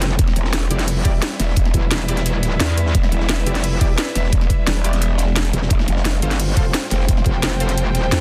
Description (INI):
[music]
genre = dark technical drum and bass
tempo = 174 BPM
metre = 4/4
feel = straight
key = E phrygian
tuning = A4 = 442 Hz
[part]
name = deep dark ambient pad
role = sustained chords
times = 0.0-8.2 s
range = G3 to D5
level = -34 LUFS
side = equal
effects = chorus, built-in reverb, sidechain pumping
[part]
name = metallic wobble bass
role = bass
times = 0.0-8.2 s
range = E1 to F2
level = -22 LUFS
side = equal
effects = distortion, chorus, tube saturation
[part]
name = drum and bass drum kit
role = drums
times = 0.0-8.2 s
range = hi-hat, snare drum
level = -25 LUFS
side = equal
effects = overdrive
[part]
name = warm symphonic string section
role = texture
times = 0.0-8.2 s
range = C4 to G5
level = -33 LUFS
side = equal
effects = sidechain pumping
[part]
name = crunchy breakbeat drum kit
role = drums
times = 0.1-8.2 s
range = hi-hat, ride cymbal, snare drum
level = -33 LUFS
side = equal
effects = none
[part]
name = growl bass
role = bass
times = 0.2-7.2 s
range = E1 to F1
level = -22 LUFS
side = equal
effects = chorus, overdrive, sidechain pumping
[part]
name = electronic kick drum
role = drums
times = 0.2-7.3 s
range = none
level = -20 LUFS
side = equal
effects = overdrive
[part]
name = orchestra-hit-like synth stab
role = stabs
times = 0.7-7.7 s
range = E4 to D5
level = -33 LUFS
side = equal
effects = none
[sound]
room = small room reverb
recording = dense, heavily limited modern master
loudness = -18 LUFS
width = mono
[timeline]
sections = 0.0-8.2 A section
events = none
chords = 0.2 Em7; 5.7 F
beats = | 0.19 0.53 0.88 1.22 | 1.57 1.91 2.26 2.60 | 2.95 3.29 3.64 3.98 | 4.33 4.67 5.02 5.36 | 5.71 6.05 6.40 6.74 | 7.09 7.43 7.78 8.12